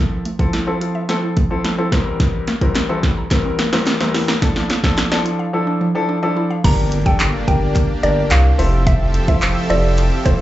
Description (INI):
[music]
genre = dance-pop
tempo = 108 BPM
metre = 4/4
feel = straight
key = G dorian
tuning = A4 = 440 Hz
[part]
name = clear baby grand piano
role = accompaniment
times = 0.0-10.4 s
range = E2 to E5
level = -21 LUFS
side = left 2 dB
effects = sidechain pumping, plate reverb, slapback echo
[part]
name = mallet-like synth pluck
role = arpeggios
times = 0.0-6.6 s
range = D3 to Bb5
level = -27 LUFS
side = right 2 dB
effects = chorus, sidechain pumping, plate reverb, digital delay
[part]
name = deep house drum kit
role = drums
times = 0.3-10.4 s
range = crash cymbal, handclaps, hi-hat, kick drum, snare drum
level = -17 LUFS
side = equal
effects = none
[part]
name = group handclap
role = percussion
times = 2.8-10.1 s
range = none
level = -32 LUFS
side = left 3 dB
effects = none
[part]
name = mallet-like synth pluck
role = melody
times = 6.6-10.4 s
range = C5 to Bb5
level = -22 LUFS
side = right 2 dB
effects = chorus, sidechain pumping, plate reverb, slapback echo
[part]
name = supersaw pad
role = sustained chords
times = 6.6-10.4 s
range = F3 to E5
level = -24 LUFS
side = right 1 dB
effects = sidechain pumping, plate reverb
[part]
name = saturated sub bass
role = bass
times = 6.6-10.4 s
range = F1 to C2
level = -16 LUFS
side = equal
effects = sidechain pumping
[part]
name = impact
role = sound effects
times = 6.6-8.9 s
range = none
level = -29 LUFS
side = equal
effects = none
[sound]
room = light reverb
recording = live gig heard through the venue's PA, club reverb, nothing above 7.9 kHz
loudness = -15 LUFS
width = side -14 dB against mid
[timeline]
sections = 0.0-6.6 A section; 6.6-10.4 B section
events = build-up 0.0-6.6; drum fill 0.0-5.5; drop 6.6-10.4; impact 6.6-8.9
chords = 0.0 Fmaj7; 1.9 C7/E; 4.4 Dmadd9; 6.6 Gm; 8.6 Fmaj7